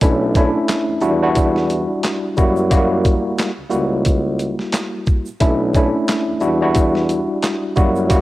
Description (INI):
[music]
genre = hip hop, boom-bap hip-hop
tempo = 89 BPM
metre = 4/4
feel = swing 56% on 16ths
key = unclear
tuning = A4 = 440 Hz
[part]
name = tine electric piano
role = accompaniment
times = 0.0-8.2 s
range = G3 to F#4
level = -18 LUFS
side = equal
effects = overdrive, fast stereo tremolo, cassette tape
[part]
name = warm tuba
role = bass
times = 0.0-8.2 s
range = B1 to F#2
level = -21 LUFS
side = equal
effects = none
[part]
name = boom bap sampler-style drum kit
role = drums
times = 0.0-8.2 s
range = handclaps, hi-hat, kick drum, shaker, snare drum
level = -18 LUFS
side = equal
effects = cassette tape
[part]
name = egg shaker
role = percussion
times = 0.0-8.2 s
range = none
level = -42 LUFS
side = right 7 dB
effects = none
[sound]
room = studio ambience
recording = home recording on cassette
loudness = -15 LUFS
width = side -17 dB against mid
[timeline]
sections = 0.0-8.2 A section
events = none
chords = 0.0 Bm11; 1.0 Em9; 2.4 F#7b9; 5.4 Bm11; 6.4 Em9